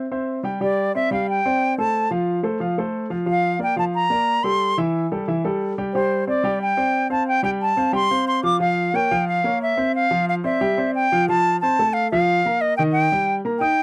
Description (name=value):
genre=latin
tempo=180 BPM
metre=4/4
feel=straight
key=F major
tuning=A4 = 441 Hz
part: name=warm baby grand piano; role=accompaniment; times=0.0-13.8 s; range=Eb3 to Eb6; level=-25 LUFS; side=equal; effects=none
part: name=bright reedy silver concert flute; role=melody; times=0.6-13.8 s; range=C5 to D6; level=-22 LUFS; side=equal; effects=none
room=little or no reverb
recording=dry, close 1970s-style studio recording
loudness=-21 LUFS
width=mono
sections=0.6-11.3 A section; 11.3-13.8 B section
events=none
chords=0.0 C; 0.6 Csus2; 1.9 F; 3.3 Bb; 4.6 Emadd11; 5.9 Csus2; 7.3 Fadd9; 8.6 Bbm; 9.9 Csus4; 10.6 Cadd9; 11.3 F; 12.6 Eb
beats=0.27 | 0.61 0.94 1.27 1.60 | 1.94 2.27 2.60 2.94 | 3.27 3.60 3.94 4.27 | 4.61 4.94 5.27 5.61 | 5.94 6.27 6.61 6.94 | 7.27 7.61 7.94 8.27 | 8.61 8.94 9.27 9.61 | 9.94 10.28 10.61 10.94 | 11.28 11.61 11.94 12.28 | 12.61 12.94 13.28 13.61